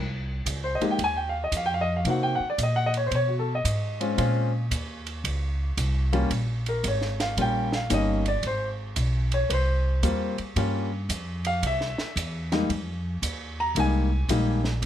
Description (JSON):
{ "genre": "jazz piano trio", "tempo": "113 BPM", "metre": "4/4", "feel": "swing 66% on 8ths", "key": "F minor", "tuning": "A4 = 441 Hz", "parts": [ { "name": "upright bass", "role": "bass", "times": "0.0-14.9 s", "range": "G1 to C3", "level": "-27 LUFS", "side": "equal", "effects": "none" }, { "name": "compact cocktail drum kit", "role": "drums", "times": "0.5-14.9 s", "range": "hi-hat, kick drum, ride cymbal, snare drum", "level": "-33 LUFS", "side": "right 3 dB", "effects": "none" }, { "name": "warm baby grand piano", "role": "melody", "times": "0.6-14.6 s", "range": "G3 to Bb5", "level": "-26 LUFS", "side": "left 2 dB", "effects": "none" } ], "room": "light reverb", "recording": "none", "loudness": "-24 LUFS", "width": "side -11 dB against mid", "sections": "0.0-14.9 A section", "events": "grand piano solo 0.0-14.9", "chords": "0.0 F7sus2; 2.1 Cm7b5; 3.1 Badd9; 4.2 Bbm; 6.3 Eb9; 8.4 Ab; 10.6 Gm7b5; 11.6 C; 12.7 Fm11", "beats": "0.46 0.99 1.52 | 2.05 2.58 3.12 3.65 | 4.18 4.71 5.25 5.78 | 6.31 6.84 7.37 7.91 | 8.44 8.97 9.50 10.03 | 10.57 11.10 11.63 12.16 | 12.69 13.22 13.76 14.29 | 14.82" }